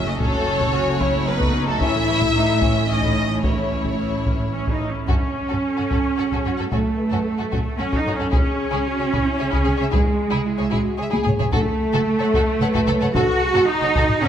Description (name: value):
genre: cinematic, epic orchestral film score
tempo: 111 BPM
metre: 3/4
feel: straight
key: F# dorian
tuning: A4 = 438 Hz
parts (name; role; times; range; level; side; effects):
- warm symphonic violin section; melody; 0.0-14.3 s; G#4 to F#5; -28 LUFS; left 2 dB; none
- warm symphonic violin section; second line; 0.0-14.3 s; C#4 to C#5; -28 LUFS; left 2 dB; none
- warm studio viola section; accompaniment; 0.0-14.3 s; E3 to F#4; -28 LUFS; right 1 dB; none
- warm French horn section; sustained chords; 0.0-14.3 s; A3 to B4; -27 LUFS; left 4 dB; none
- rich symphonic cello section; bass; 0.0-14.3 s; F#2 to F#4; -23 LUFS; right 3 dB; none
- warm studio double bass section; bass; 0.0-14.3 s; F#1 to F#2; -27 LUFS; right 3 dB; none
- taiko ensemble; drums; 0.2-14.3 s; none; -24 LUFS; equal; none
room: moderate scoring stage reverb, RT60 1.6 s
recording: none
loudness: -18 LUFS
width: side -9 dB against mid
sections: 0.0-5.1 A section; 5.1-14.3 B section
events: drum fill 11.1-11.5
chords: 0.0 F#m; 1.8 A; 5.1 F#m; 8.3 C#m; 11.5 F#m